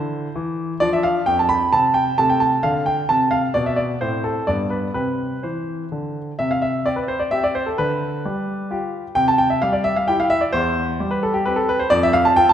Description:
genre	classical-period piano sonatina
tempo	131 BPM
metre	3/4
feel	straight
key	C major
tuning	A4 = 440 Hz
part	bright grand piano	solo	0.0-12.5 s	E2 to B5	-17 LUFS	equal	none
room	moderate scoring stage reverb, RT60 1.7 s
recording	recorded in a church or concert hall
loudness	-18 LUFS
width	side -10 dB against mid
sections	0.0-6.4 A section; 6.4-12.5 B section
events	none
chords	0.0 C; 0.8 Fmaj13; 1.7 N.C.; 2.2 D5/C; 3.6 N.C.; 4.0 Am; 4.5 G; 5.0 C; 6.4 C5; 7.8 G7/D; 9.2 C; 10.5 C/E; 11.9 F5

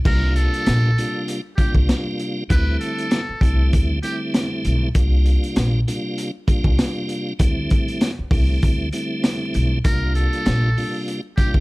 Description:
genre	hip hop, boom-bap hip-hop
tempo	98 BPM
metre	4/4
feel	swing 56% on 16ths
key	unclear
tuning	A4 = 440 Hz
part	tonewheel organ	accompaniment	0.0-11.6 s	C3 to F4	-25 LUFS	equal	overdrive, chorus vibrato, stopped rotary speaker, high-pass filter, low-pass filter
part	trumpet with metal mute	melody	0.1-4.2, 9.8-11.5 s	G4 to B4	-26 LUFS	right 1 dB	high-pass filter, low-pass filter, plate reverb
part	upright bass	bass	0.1-11.6 s	Bb1 to D2	-19 LUFS	equal	none
part	crunchy breakbeat drum kit	drums	0.1-11.6 s	crash cymbal, hi-hat, kick drum, rim click, snare drum	-20 LUFS	equal	none
room	little or no reverb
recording	vinyl crackle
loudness	-18 LUFS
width	side -22 dB against mid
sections	0.1-11.6 A section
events	none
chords	0.1 C9sus4; 2.5 D9sus4; 5.0 C9sus4; 7.4 D9sus4; 9.8 C9sus4

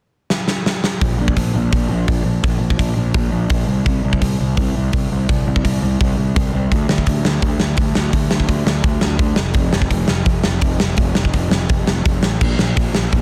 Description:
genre	punk rock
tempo	168 BPM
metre	4/4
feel	straight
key	unclear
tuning	A4 = 441 Hz
part	big rock drum kit	drums	0.3-13.2 s	crash cymbal, hi-hat, kick drum, snare drum	-20 LUFS	equal	none
part	fuzz picked electric bass	bass	1.0-13.2 s	F1 to D2	-20 LUFS	equal	overdrive
room	little or no reverb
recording	dense, heavily limited modern master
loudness	-17 LUFS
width	mono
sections	0.0-1.0 A section; 1.0-12.4 B section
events	drum fill 0.3-1.0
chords	none

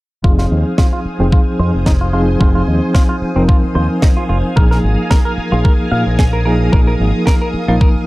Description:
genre	nu-disco, nu disco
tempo	111 BPM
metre	4/4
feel	swing 54% on 16ths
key	F minor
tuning	A4 = 443 Hz
part	reed electric piano	accompaniment	0.2-8.1 s	F3 to Bb4	-18 LUFS	equal	fast tremolo, analog delay
part	string machine, full ensemble	sustained chords	0.2-8.1 s	Bb4 to Eb6	-25 LUFS	equal	ensemble chorus, vintage 12-bit sampler grit, sidechain pumping
part	direct-recorded clean electric guitar	riff	0.2-7.9 s	C4 to F5	-23 LUFS	right 1 dB	wide subtle chorus, low-pass filter
part	fingered electric bass with an envelope filter	bass	0.2-8.0 s	F1 to Bb2	-15 LUFS	equal	none
part	electronic kick drum	drums	0.2-7.9 s	none	-12 LUFS	equal	none
part	snare drum	drums	0.4-7.4 s	none	-23 LUFS	equal	none
room	digital ambience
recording	dry, gritty hardware recording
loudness	-11 LUFS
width	side -20 dB against mid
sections	0.2-8.1 A section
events	filter sweep on clean electric guitar 0.2-8.1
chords	0.2 Fm7; 4.6 Bb7sus4

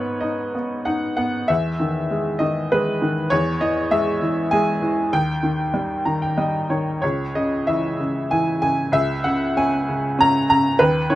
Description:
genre	classical, lyrical solo piano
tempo	90-102 BPM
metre	3/4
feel	rubato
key	unclear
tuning	A4 = 438 Hz
part	bright upright piano	solo	0.0-11.2 s	C#2 to A#5	-18 LUFS	equal	none
room	little or no reverb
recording	close, detailed microphones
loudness	-18 LUFS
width	side -15 dB against mid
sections	0.0-11.2 A section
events	upright piano fill 5.7-7.0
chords	0.0 G#m; 1.5 Emaj7; 5.1 D#; 7.0 C#m; 8.9 N.C.

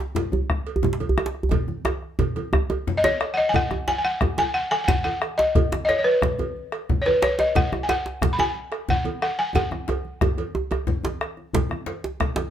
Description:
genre	west african traditional, West African drum ensemble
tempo	120 BPM (dotted quarters)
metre	12/8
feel	straight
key	unclear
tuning	A4 = 440 Hz
part	djembe	percussion	0.1-12.5 s	none	-29 LUFS	left 4 dB	none
part	congas	percussion	0.2-12.5 s	none	-31 LUFS	right 6 dB	none
part	cowbell	percussion	0.2-12.5 s	none	-33 LUFS	right 7 dB	none
part	djembe	percussion	0.2-12.5 s	none	-27 LUFS	right 2 dB	none
part	bombo	percussion	0.5-12.4 s	none	-25 LUFS	left 2 dB	none
part	balafon	melody	3.0-9.9 s	B4 to B5	-22 LUFS	left 1 dB	plate reverb
room	wet studio reverb, RT60 0.6 s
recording	heard from further back in the room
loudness	-21 LUFS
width	side -10 dB against mid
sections	0.0-3.5 A section; 3.5-11.5 B section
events	speeding up 0.0-12.5; drum fill 1.5-3.5, 9.6-11.5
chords	none

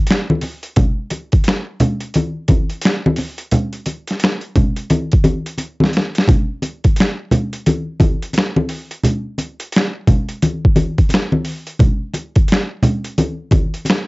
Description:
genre	R&B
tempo	87 BPM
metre	4/4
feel	swing 62% on 16ths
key	none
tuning	none
part	boom bap sampler-style drum kit	drums	0.1-14.1 s	finger snaps, hi-hat, kick drum, snare drum	-15 LUFS	equal	overdrive, cassette tape
part	congas	percussion	0.3-14.1 s	none	-17 LUFS	equal	none
room	light reverb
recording	home recording on cassette, nothing above 7.8 kHz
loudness	-15 LUFS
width	side -23 dB against mid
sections	0.0-14.1 A section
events	drum fill 5.6-6.3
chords	none

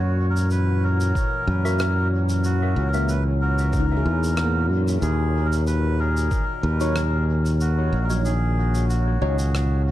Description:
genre	ambient dub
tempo	93 BPM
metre	4/4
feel	swing 54% on 16ths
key	F# mixolydian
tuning	A4 = 439 Hz
part	melodica	melody	0.0-9.8 s	F#4 to B4	-29 LUFS	equal	dub echo
part	warbly tape-like pad	sustained chords	0.0-9.9 s	A#2 to C#5	-31 LUFS	left 1 dB	chorus, built-in reverb
part	modern bright fingered electric bass	bass	0.0-9.9 s	A#1 to F#2	-20 LUFS	equal	none
part	shaker and rim click	drums	0.4-9.7 s	none	-34 LUFS	right 1 dB	studio reverb, dub echo
part	electronic kick drum	drums	1.2-6.5 s	none	-25 LUFS	equal	studio reverb
part	bright tine electric piano	stabs	1.6-9.4 s	F#3 to E5	-33 LUFS	equal	phaser, dub echo
part	handpan	arpeggios	3.8-5.9 s	A#3 to G#4	-34 LUFS	left 2 dB	none
room	light reverb, studio ambience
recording	echo-heavy mix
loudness	-19 LUFS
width	side -14 dB against mid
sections	0.0-9.9 A section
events	kick drops out 8.9-9.9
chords	0.0 F#7; 5.0 D#m7

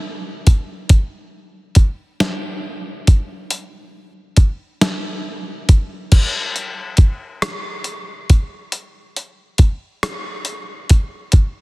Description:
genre	R&B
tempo	46 BPM (dotted quarters)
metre	6/8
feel	straight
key	none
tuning	none
part	dusty soul sampler-style drum kit	drums	0.5-11.5 s	crash cymbal, hi-hat, kick drum, rim click, snare drum	-14 LUFS	equal	none
room	light reverb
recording	dense, heavily limited modern master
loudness	-16 LUFS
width	side -22 dB against mid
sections	0.0-6.1 A section; 6.1-11.6 B section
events	none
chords	none

